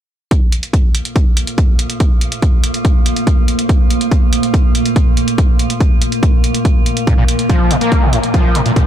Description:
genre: driving peak-time techno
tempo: 142 BPM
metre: 4/4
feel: straight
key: unclear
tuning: A4 = 440 Hz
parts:
  - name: metallic inharmonic drone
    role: drone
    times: 1.0-8.9 s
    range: Bb2 to Bb3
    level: -19 LUFS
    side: right 1 dB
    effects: chorus, built-in reverb, sidechain pumping
  - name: electronic hi-hat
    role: drums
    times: 0.3-8.8 s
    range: none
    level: -23 LUFS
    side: right 2 dB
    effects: sidechain pumping on hats
  - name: electronic kick drum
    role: drums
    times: 0.3-8.8 s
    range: none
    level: -12 LUFS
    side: equal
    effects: overdrive
  - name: screaming distorted acid line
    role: riff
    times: 7.1-8.8 s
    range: Ab2 to Bb3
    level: -16 LUFS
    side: equal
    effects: distortion, ensemble chorus, sidechain pumping, ping-pong delay
room: light reverb, digital ambience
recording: none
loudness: -11 LUFS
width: side -10 dB against mid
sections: 0.3-8.9 A section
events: none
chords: 0.3 Bb5

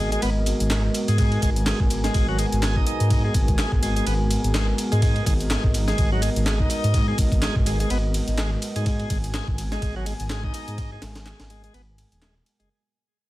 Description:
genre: breakbeat, breaks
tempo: 125 BPM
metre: 4/4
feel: swing 57% on 16ths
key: G# minor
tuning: A4 = 441 Hz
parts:
  - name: dark analog pad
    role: sustained chords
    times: 0.0-12.7 s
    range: G#3 to G#5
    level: -29 LUFS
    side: equal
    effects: chorus, sidechain pumping
  - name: bright tonewheel organ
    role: riff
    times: 0.0-12.7 s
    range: F#3 to G#4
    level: -30 LUFS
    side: equal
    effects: overdrive, slow rotary speaker, tube saturation, vintage 12-bit sampler grit, digital delay
  - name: dark detuned saw bass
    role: bass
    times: 0.0-12.7 s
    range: D#1 to G#2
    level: -24 LUFS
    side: equal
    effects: none
  - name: punchy analog drum machine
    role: drums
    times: 0.1-12.7 s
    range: handclaps, hi-hat, ride cymbal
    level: -33 LUFS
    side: left 1 dB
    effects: overdrive, studio ambience
  - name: breakbeat sampler-style drum kit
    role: drums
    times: 0.2-12.7 s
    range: kick drum, ride cymbal, snare drum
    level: -25 LUFS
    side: equal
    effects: studio ambience
room: digital ambience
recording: dense, heavily limited modern master, vinyl crackle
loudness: -20 LUFS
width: side -17 dB against mid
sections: 0.0-12.7 A section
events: drop 0.0-12.7; fade-out 7.6-12.7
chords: 0.0 G#m9

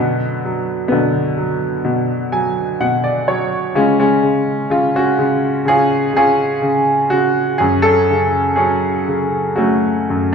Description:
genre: classical, lyrical solo piano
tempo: 63 BPM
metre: 4/4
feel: rubato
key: F# harmonic minor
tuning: A4 = 440 Hz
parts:
  - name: clear grand piano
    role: solo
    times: 0.0-10.3 s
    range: F#2 to G#5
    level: -14 LUFS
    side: equal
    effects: none
room: wet recital hall reverb, RT60 1.5 s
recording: recorded in a church or concert hall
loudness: -14 LUFS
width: side -6 dB against mid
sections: 0.0-10.3 A section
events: grand piano fill 1.9-3.8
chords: 0.0 Bm; 3.8 C#; 7.6 F#madd9

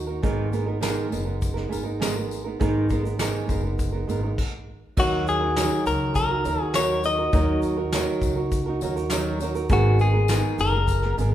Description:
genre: acoustic pop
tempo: 101 BPM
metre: 4/4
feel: straight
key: Eb minor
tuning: A4 = 438 Hz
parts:
  - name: nylon-string guitar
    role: accompaniment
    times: 0.0-11.3 s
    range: Ab2 to Bb4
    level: -26 LUFS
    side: right 3 dB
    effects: none
  - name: upright bass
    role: bass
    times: 0.0-11.3 s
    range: Gb1 to Eb2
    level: -26 LUFS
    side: equal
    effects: none
  - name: soft brush drum kit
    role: drums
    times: 0.2-11.3 s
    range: crash cymbal, kick drum, shaker, snare drum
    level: -28 LUFS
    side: equal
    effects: none
  - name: tambourine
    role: percussion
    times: 0.5-11.3 s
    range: none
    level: -39 LUFS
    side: left 9 dB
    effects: none
  - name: direct-recorded clean electric guitar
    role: melody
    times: 5.0-11.1 s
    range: Gb4 to Eb5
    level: -24 LUFS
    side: left 3 dB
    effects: none
room: wet recital hall reverb, RT60 1.4 s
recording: recorded in a church or concert hall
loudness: -21 LUFS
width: side -12 dB against mid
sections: 0.0-5.0 A section; 5.0-11.3 B section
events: stop 4.4-5.0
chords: 0.2 Abmadd9; 5.0 Ebm; 9.7 Abmadd9

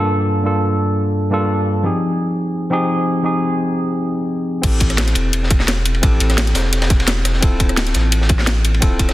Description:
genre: liquid drum and bass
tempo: 172 BPM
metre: 4/4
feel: swing 53% on 16ths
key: A phrygian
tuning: A4 = 439 Hz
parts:
  - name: tine electric piano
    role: accompaniment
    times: 0.0-9.1 s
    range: G2 to A4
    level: -18 LUFS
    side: equal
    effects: overdrive, tape echo
  - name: warm sub bass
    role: bass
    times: 4.6-9.1 s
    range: D1 to A1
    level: -17 LUFS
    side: equal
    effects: none
  - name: crunchy breakbeat drum kit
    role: drums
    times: 4.6-9.1 s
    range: ride cymbal, snare drum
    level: -24 LUFS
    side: equal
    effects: high-pass filter on cymbals, studio reverb, high-pass filter on snare, high-pass filter on room
  - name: drum and bass drum kit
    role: drums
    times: 4.6-9.1 s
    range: crash cymbal, hi-hat, rim click, snare drum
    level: -20 LUFS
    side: left 1 dB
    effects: overdrive, studio reverb
  - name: electronic kick drum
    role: drums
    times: 4.6-9.1 s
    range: none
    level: -15 LUFS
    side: equal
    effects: overdrive, studio reverb
room: light reverb, studio reverb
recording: dense, heavily limited modern master, low-pass filter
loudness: -15 LUFS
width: side -16 dB against mid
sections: 0.0-4.6 A section; 4.6-9.1 B section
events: filter sweep on tine electric piano 0.0-4.6; filter sweep 0.0-4.6; drop 4.6-9.1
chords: 0.0 Gm7; 1.8 Fm7; 4.6 Am7; 7.4 Dm7

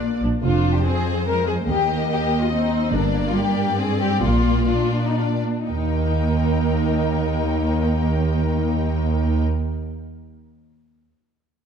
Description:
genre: cinematic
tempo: 114-145 BPM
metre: 3/4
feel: straight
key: Eb major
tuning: A4 = 444 Hz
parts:
  - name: clear symphonic violin section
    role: melody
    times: 0.0-9.4 s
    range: C5 to G5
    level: -33 LUFS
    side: left 4 dB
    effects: none
  - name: warm symphonic violin section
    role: second line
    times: 0.0-9.4 s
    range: D4 to D5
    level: -25 LUFS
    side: left 6 dB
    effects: none
  - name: rich symphonic cello section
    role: bass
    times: 0.0-9.4 s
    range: Eb2 to Bb3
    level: -23 LUFS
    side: equal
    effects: none
  - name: rich symphonic viola section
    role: accompaniment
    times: 0.2-9.4 s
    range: F3 to Bb4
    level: -28 LUFS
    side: right 2 dB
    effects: none
  - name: rich symphonic double bass section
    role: bass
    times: 0.2-9.4 s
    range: F1 to Eb2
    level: -23 LUFS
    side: right 3 dB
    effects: none
room: moderate scoring stage reverb, RT60 1.8 s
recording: dark, warm production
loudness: -18 LUFS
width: side -7 dB against mid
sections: 0.4-5.7 A section; 5.7-8.8 B section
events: slowing down 2.3-5.7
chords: 0.4 Fm; 1.7 Eb; 2.9 Gm; 4.2 Bb; 5.7 Eb

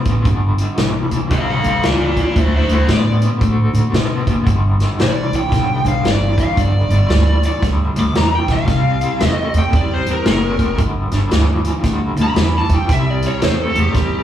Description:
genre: electric blues shuffle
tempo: 114 BPM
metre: 4/4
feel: swing 63% on 8ths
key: G mixolydian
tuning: A4 = 440 Hz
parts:
  - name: overdriven semi-hollow guitar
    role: riff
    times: 0.0-14.2 s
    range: G2 to B3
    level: -20 LUFS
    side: left 1 dB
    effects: tremolo, slapback echo
  - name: upright bass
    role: bass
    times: 0.1-14.2 s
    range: F#1 to B2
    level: -17 LUFS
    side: equal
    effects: none
  - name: vintage drum kit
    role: drums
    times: 0.1-14.1 s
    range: hi-hat, kick drum, snare drum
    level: -20 LUFS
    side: equal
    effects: none
  - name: lead guitar through a small cranked amp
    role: melody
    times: 1.3-14.2 s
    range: E4 to D6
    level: -20 LUFS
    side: equal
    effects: overdrive, slapback echo
room: small room ambience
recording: live gig heard through the venue's PA, club reverb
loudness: -13 LUFS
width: side -11 dB against mid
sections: 0.0-4.5 A section; 4.5-14.2 B section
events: lead electric guitar solo 4.5-14.2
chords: 0.3 G9; 2.4 Dsus2; 4.5 G; 8.7 C7; 10.8 G5; 12.9 C

